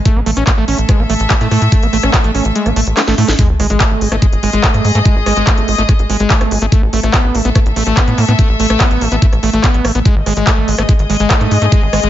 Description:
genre	psychedelic trance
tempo	144 BPM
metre	4/4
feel	straight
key	unclear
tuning	A4 = 440 Hz
part	rich chamber string section	texture	0.0-12.1 s	G#3 to E6	-20 LUFS	left 1 dB	sidechain pumping
part	overdriven acid bass	riff	0.1-12.1 s	G#3 to C#4	-17 LUFS	right 1 dB	auto-pan, sidechain pumping, dub echo
part	electronic kick drum	drums	0.1-11.8 s	none	-12 LUFS	equal	none
part	techno drum kit	drums	0.1-12.1 s	handclaps, hi-hat, rim click, snare drum	-18 LUFS	left 1 dB	overdrive
part	tight sequencer bass	bass	0.2-12.1 s	G#1 to A2	-15 LUFS	equal	none
part	sub drop	sound effects	3.4-5.1 s	none	-22 LUFS	equal	none
room	light reverb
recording	nothing above 7.5 kHz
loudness	-10 LUFS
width	side -12 dB against mid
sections	0.0-3.4 A section; 3.4-12.1 B section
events	kick drops out 2.6-3.4; drum fill 3.0-3.4; drop 3.4-12.1; impact 3.4-5.1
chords	0.1 A5; 3.4 G#5; 6.7 A5; 10.1 G#5

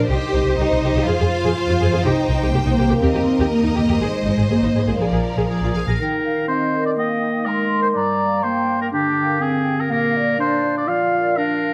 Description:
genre	cinematic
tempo	123 BPM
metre	4/4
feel	straight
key	C minor, Eb major from 6.0 s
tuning	A4 = 440 Hz
part	clear symphonic violin section	melody	0.0-6.0 s	D5 to G5	-33 LUFS	equal	none
part	warm symphonic violin section	second line	0.0-5.8 s	Bb4 to C5	-29 LUFS	equal	none
part	rich symphonic viola section	accompaniment	0.0-5.9 s	Eb4 to Ab4	-28 LUFS	equal	none
part	concert harp	arpeggios	0.0-11.7 s	G2 to G5	-30 LUFS	equal	none
part	rich symphonic cello section	bass	0.0-5.7 s	F3 to G4	-23 LUFS	equal	none
part	warm symphonic double bass section	bass	0.1-5.9 s	Ab1 to F2	-23 LUFS	equal	none
part	warm oboe	second line	5.5-11.7 s	G4 to F5	-24 LUFS	equal	none
part	clear clarinet	second line	6.0-11.7 s	G3 to F4	-25 LUFS	equal	none
part	mellow large flute ensemble	second line	6.0-11.7 s	D5 to C6	-28 LUFS	equal	none
room	moderate scoring stage reverb, RT60 1.9 s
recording	none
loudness	-19 LUFS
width	mono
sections	0.0-6.0 A section; 6.0-11.7 B section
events	none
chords	0.1 Cm; 1.1 Fm; 2.0 Cm; 3.0 Eb; 4.0 Ab; 5.0 Bb7; 6.0 Eb; 8.0 Gm; 9.9 Bb

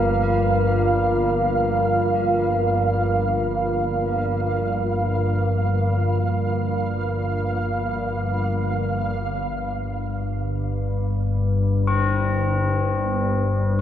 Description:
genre	dark ambient drone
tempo	free time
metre	none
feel	none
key	G minor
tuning	A4 = 440 Hz
part	dark analog pad	sustained chords	0.0-13.8 s	D4 to G5	-24 LUFS	right 1 dB	chorus
part	tubular bells	arpeggios	0.0-13.8 s	C4 to Bb4	-29 LUFS	left 4 dB	tape echo
part	organ-like drone	drone	0.0-13.8 s	G1 to G2	-22 LUFS	left 1 dB	ensemble chorus, built-in reverb
part	flickering grainy texture	texture	0.0-9.3 s	F5	-30 LUFS	right 2 dB	built-in reverb
room	wet cathedral reverb, RT60 5.2 s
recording	none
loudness	-20 LUFS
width	side -10 dB against mid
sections	0.0-9.2 A section; 9.2-13.8 B section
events	filter sweep on synth drone 9.2-13.8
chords	0.0 Bb5; 9.2 Gm

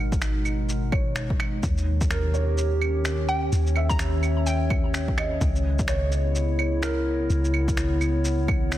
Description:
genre	future garage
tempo	127 BPM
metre	4/4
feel	swing 61% on 16ths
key	unclear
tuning	A4 = 440 Hz
part	felt-muted upright piano	accompaniment	0.0-8.8 s	A#4 to E5	-34 LUFS	right 2 dB	sidechain pumping, analog delay
part	warbly tape-like pad	sustained chords	0.0-8.8 s	B2 to F#5	-28 LUFS	equal	chorus, built-in reverb, sidechain pumping
part	soft 808-style bass	bass	0.0-8.8 s	G#1 to D#2	-25 LUFS	equal	sidechain pumping
part	electronic kick drum	drums	0.1-8.6 s	none	-26 LUFS	equal	overdrive
part	electronic shaker, finger snaps and claves	drums	0.1-8.8 s	none	-32 LUFS	right 2 dB	overdrive
part	hollow square pluck	melody	3.3-4.9 s	G5 to A#5	-32 LUFS	right 1 dB	chorus, cassette tape, tape echo
room	moderate lush hall reverb, RT60 1.8 s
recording	dense, heavily limited modern master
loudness	-22 LUFS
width	side -13 dB against mid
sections	0.0-8.8 A section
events	none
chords	0.0 G#m7; 1.6 D#7b9; 5.4 C#m7

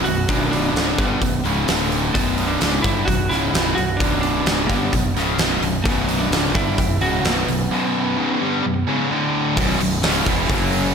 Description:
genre	hard rock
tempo	129 BPM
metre	4/4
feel	straight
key	B minor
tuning	A4 = 440 Hz
part	lightly driven lead guitar	melody	0.0-9.1 s	B3 to F#4	-25 LUFS	right 1 dB	digital delay
part	high-gain distorted guitar	riff	0.0-10.9 s	B1 to G3	-23 LUFS	right 9 dB	distortion, slapback echo
part	overdriven electric guitar	riff	0.0-10.9 s	B1 to G3	-23 LUFS	left 10 dB	none
part	fuzz fingered electric bass	bass	0.0-10.9 s	B0 to G1	-25 LUFS	equal	overdrive
part	huge arena drum kit	drums	0.1-10.8 s	hi-hat, kick drum, snare drum	-22 LUFS	equal	none
part	overdriven electric guitar	riff	9.6-10.9 s	B1 to F#3	-25 LUFS	equal	none
room	moderate lush hall reverb, RT60 1.8 s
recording	big arena sound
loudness	-17 LUFS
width	side -6 dB against mid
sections	0.0-9.6 A section; 9.6-10.9 B section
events	none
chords	0.0 Bm; 1.7 D5; 2.1 Bm; 9.1 D5; 9.6 B5

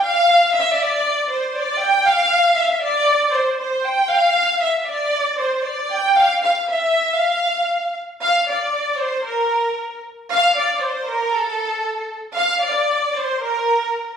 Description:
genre	mexican folk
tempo	116 BPM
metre	2/4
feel	straight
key	D minor from 8.2 s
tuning	A4 = 440 Hz
part	rich studio violin section	solo	0.0-14.1 s	A4 to G5	-16 LUFS	equal	none
room	wet large studio reverb, RT60 1.3 s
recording	band playing live in one room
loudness	-16 LUFS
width	side -8 dB against mid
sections	0.0-8.2 A section; 8.2-14.2 B section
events	none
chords	none

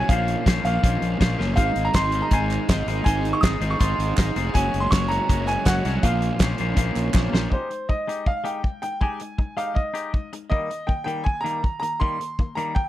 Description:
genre	indie rock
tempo	161 BPM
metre	4/4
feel	straight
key	Ab major from 7.5 s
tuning	A4 = 440 Hz
part	bright upright piano	melody	0.0-12.9 s	C5 to Eb6	-26 LUFS	right 1 dB	slapback echo
part	overdriven semi-hollow guitar	riff	0.0-7.5 s	Bb2 to Db5	-29 LUFS	right 6 dB	lush chorus
part	twangy electric guitar	riff	0.0-12.9 s	Bb2 to Db5	-30 LUFS	left 8 dB	none
part	fuzz fingered electric bass	bass	0.0-7.5 s	F1 to C2	-25 LUFS	equal	overdrive
part	loose indie drum kit	drums	0.1-12.8 s	hi-hat, kick drum, snare drum	-22 LUFS	equal	none
part	group handclap	percussion	2.0-7.2 s	none	-35 LUFS	right 8 dB	none
room	small room reverb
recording	dry, close 1970s-style studio recording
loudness	-20 LUFS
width	side -14 dB against mid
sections	0.0-7.5 A section; 7.5-12.9 B section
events	drum fill 1.4, 7.2-7.5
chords	0.1 Bbmadd9; 1.6 Ab6; 4.5 Gbsus2; 6.0 Bbmadd9; 7.5 Abmaj7(no3); 10.5 Eb

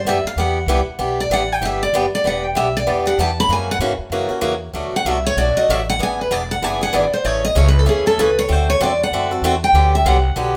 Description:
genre	acoustic string swing (jazz manouche)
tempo	192 BPM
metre	4/4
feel	swing 61% on 8ths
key	E minor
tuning	A4 = 440 Hz
part	picked steel-string acoustic guitar	melody	0.0-10.6 s	G#4 to B5	-20 LUFS	equal	none
part	upright bass	bass	0.0-10.6 s	E1 to G#2	-24 LUFS	equal	none
part	picked swing-style acoustic guitar	accompaniment	0.1-10.5 s	B2 to A4	-23 LUFS	equal	none
room	moderate studio reverb, RT60 0.8 s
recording	none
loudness	-18 LUFS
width	mono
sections	0.0-2.2 A section; 2.2-10.6 A section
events	steel-string acoustic guitar solo 0.0-10.6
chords	0.0 Em7; 3.5 F#7; 4.7 Bm7; 6.0 E7; 7.2 Amaj7; 8.5 D7; 9.7 Gmaj7

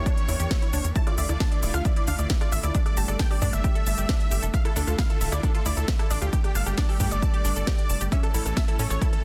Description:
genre	uplifting trance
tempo	134 BPM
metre	4/4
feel	straight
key	D harmonic minor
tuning	A4 = 440 Hz
part	dense compressed supersaw	melody	0.0-9.2 s	G4 to A5	-36 LUFS	equal	sidechain pumping, tape echo
part	analog pluck	second line	0.0-9.2 s	G4 to A5	-40 LUFS	equal	chorus, sidechain pumping, tape echo
part	lush unison pad	sustained chords	0.0-9.2 s	D3 to G4	-39 LUFS	equal	chorus, sidechain pumping
part	tight sequencer bass	bass	0.0-9.0 s	D1 to A2	-29 LUFS	equal	tube saturation, sidechain pumping
part	unison pluck	arpeggios	0.1-9.1 s	C#4 to A5	-38 LUFS	equal	sidechain pumping, tape echo
part	electronic kick drum	drums	0.1-9.1 s	none	-27 LUFS	equal	none
part	techno drum kit	drums	0.1-9.2 s	hi-hat, rim click, shaker, snare drum	-35 LUFS	equal	sidechain pumping on hats, sidechain pumping on cymbals, sidechain pumping on perc
room	digital ambience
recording	dense, heavily limited modern master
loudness	-24 LUFS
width	mono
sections	0.0-9.2 A section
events	none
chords	0.0 Em7b5; 1.0 Dmadd9; 2.7 Gsus2; 4.5 Dmadd9; 6.3 Gsus2; 8.1 A

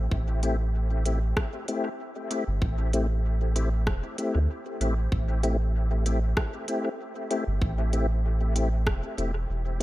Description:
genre	ambient dub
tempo	96 BPM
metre	4/4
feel	swing 54% on 16ths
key	A minor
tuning	A4 = 440 Hz
part	soft dub sub bass	bass	0.0-9.8 s	E1 to D2	-25 LUFS	equal	tube saturation
part	electronic kick drum	drums	0.1-9.0 s	none	-28 LUFS	equal	studio reverb
part	tonewheel organ	stabs	0.4-9.8 s	A3 to G4	-31 LUFS	left 2 dB	chorus vibrato, slow rotary speaker, dub echo
part	organic electronic drum kit	drums	0.4-9.8 s	hi-hat, rim click	-34 LUFS	right 1 dB	studio reverb, dub echo
room	digital ambience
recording	none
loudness	-25 LUFS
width	side -17 dB against mid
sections	0.0-9.8 A section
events	none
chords	0.0 Am7

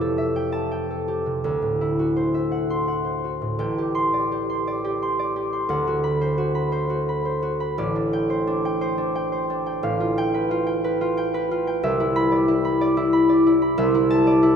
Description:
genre	classical, solo harp piece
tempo	55-62 BPM (dotted quarters)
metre	6/8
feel	rubato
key	A dorian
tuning	A4 = 440 Hz
part	concert harp	solo	0.0-14.6 s	A1 to C6	-20 LUFS	equal	none
room	wet cathedral reverb, RT60 4.4 s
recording	none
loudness	-20 LUFS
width	side -7 dB against mid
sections	0.0-3.6 A section; 3.6-14.6 B section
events	none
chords	0.0 Fmaj9; 1.4 D9; 3.6 Am7; 5.7 D13; 7.8 Am11; 9.8 G9/A; 11.8 Cmaj9; 13.8 Dsus2/C

